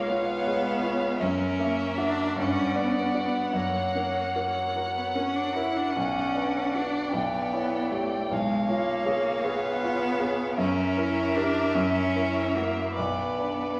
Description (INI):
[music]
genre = classical, slow romantic movement for piano quartet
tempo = 51 BPM (dotted quarters)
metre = 6/8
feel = uneven beats, rubato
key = unclear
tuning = A4 = 440 Hz
[part]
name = rich violin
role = melody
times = 0.0-13.8 s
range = D5 to G5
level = -34 LUFS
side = equal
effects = none
[part]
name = clear cello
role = second line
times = 0.0-13.8 s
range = G#3 to E4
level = -32 LUFS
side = equal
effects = none
[part]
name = rich violin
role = second line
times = 0.0-13.8 s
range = A#4 to D5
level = -38 LUFS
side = equal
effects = none
[part]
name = clear grand piano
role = accompaniment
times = 0.0-13.8 s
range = B1 to E5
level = -31 LUFS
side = equal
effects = none
[sound]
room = wet recital hall reverb, RT60 1.4 s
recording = vinyl crackle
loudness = -27 LUFS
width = mono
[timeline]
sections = 0.0-13.8 A section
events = none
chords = 0.0 C#7/B; 1.2 F#7; 2.4 Gmaj7; 3.5 F#; 6.0 Bm; 7.1 C#dim/B; 8.3 C#7/B; 10.6 F#7b9; 11.7 F#7; 13.0 Bm